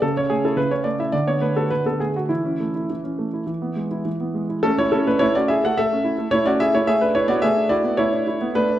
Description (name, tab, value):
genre	classical-period piano sonatina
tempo	106 BPM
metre	4/4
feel	rubato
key	A major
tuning	A4 = 442 Hz
part	warm concert grand piano	solo	0.0-8.8 s	C#3 to F#5	-18 LUFS	equal	none
room	moderate recital hall reverb, RT60 1.4 s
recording	dark, warm production, faint mains hum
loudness	-18 LUFS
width	side -12 dB against mid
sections	0.0-4.6 A section; 4.6-8.8 B section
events	none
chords	0.0 A/C#; 1.1 Bm7/D; 2.3 A/E; 3.5 E; 4.6 A